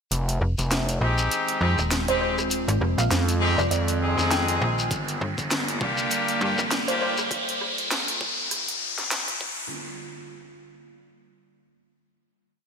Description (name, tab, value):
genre	glitch hop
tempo	100 BPM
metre	4/4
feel	swing 57% on 16ths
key	G phrygian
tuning	A4 = 440 Hz
part	warbly tape-like pad	sustained chords	1.1-9.7 s	D3 to F4	-33 LUFS	right 2 dB	chorus, built-in reverb, sidechain pumping
part	gritty driven synth bass	bass	0.1-5.8 s	F1 to F2	-25 LUFS	equal	tube saturation
part	drum and bass drum kit	drums	0.1-9.4 s	hi-hat, rim click, snare drum	-30 LUFS	equal	overdrive
part	shekere	percussion	0.1-7.3 s	none	-34 LUFS	left 3 dB	none
part	riser	sound effects	2.5-9.7 s	none	-31 LUFS	left 1 dB	none
part	slap-like FM bass	bass	0.4-7.3 s	Eb1 to G2	-25 LUFS	equal	none
part	brilliant horn section	stabs	1.0-7.2 s	Ab3 to Ab4	-27 LUFS	left 1 dB	sidechain pumping, ping-pong delay
part	woody wave-folded pluck	melody	2.1-7.1 s	C5 to G5	-30 LUFS	right 1 dB	lush chorus, cassette tape, ping-pong delay
part	electronic kick drum	drums	4.9-9.5 s	none	-33 LUFS	equal	overdrive
room	moderate lush hall reverb, RT60 2.8 s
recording	bright 1980s-style digital production, high-pass filter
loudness	-22 LUFS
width	side -6 dB against mid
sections	0.1-9.7 build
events	build-up 0.1-9.7; filter sweep on ambient pad 0.1-9.7; filter sweep 0.1-9.7; riser 2.5-9.7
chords	0.1 Fm7; 4.9 Gm7